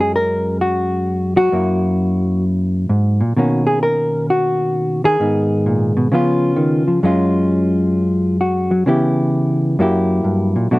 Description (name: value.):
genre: solo jazz.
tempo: 131 BPM.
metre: 4/4.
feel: swing 67% on 8ths.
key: F# major.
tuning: A4 = 439 Hz.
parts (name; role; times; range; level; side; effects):
hollow-body jazz guitar; solo; 0.0-10.8 s; F#2 to A#4; -14 LUFS; equal; none.
room: light reverb.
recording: dry, close 1970s-style studio recording.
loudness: -14 LUFS.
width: side -20 dB against mid.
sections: 0.0-10.8 A section.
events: none.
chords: 0.0 F#add9; 1.5 F#7; 3.4 Bmaj9; 5.2 G#m; 6.1 C#7; 7.0 F#sus2; 8.9 C#m7b5; 9.8 F#7b9.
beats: 0.14 0.60 1.06 | 1.52 1.98 2.44 2.89 | 3.35 3.81 4.27 4.73 | 5.19 5.65 6.11 6.57 | 7.03 7.49 7.95 8.41 | 8.87 9.33 9.79 10.24 | 10.71.